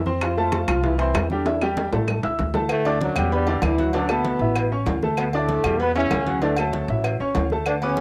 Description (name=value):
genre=latin, salsa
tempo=193 BPM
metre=4/4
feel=straight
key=D major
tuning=A4 = 440 Hz
part: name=clear trombone section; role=melody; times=0.0-8.0 s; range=F#2 to F4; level=-27 LUFS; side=equal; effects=cassette tape
part: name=upright bass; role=bass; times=0.0-8.0 s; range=A1 to F2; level=-28 LUFS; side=equal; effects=none
part: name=bright upright piano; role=accompaniment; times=0.1-8.0 s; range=D3 to E6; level=-27 LUFS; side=equal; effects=cassette tape
part: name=congas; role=percussion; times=0.1-8.0 s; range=none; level=-35 LUFS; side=equal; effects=none
part: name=bongos and cowbell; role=percussion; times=0.2-8.0 s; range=none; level=-36 LUFS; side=equal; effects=none
part: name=claves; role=percussion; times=0.2-7.8 s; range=none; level=-34 LUFS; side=equal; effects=none
part: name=timbales and agogo bells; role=percussion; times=0.2-8.0 s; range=none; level=-32 LUFS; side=equal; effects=none
room=moderate small room reverb, RT60 0.5 s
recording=home recording on cassette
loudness=-22 LUFS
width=mono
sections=0.0-2.7 A section; 2.7-8.0 B section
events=drum fill 1.5-2.7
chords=0.2 Fmaj7; 1.5 Em7; 2.1 A; 2.7 D; 3.3 Em7; 3.9 D6; 4.6 A; 5.2 D5; 5.8 E5; 6.4 D; 7.0 A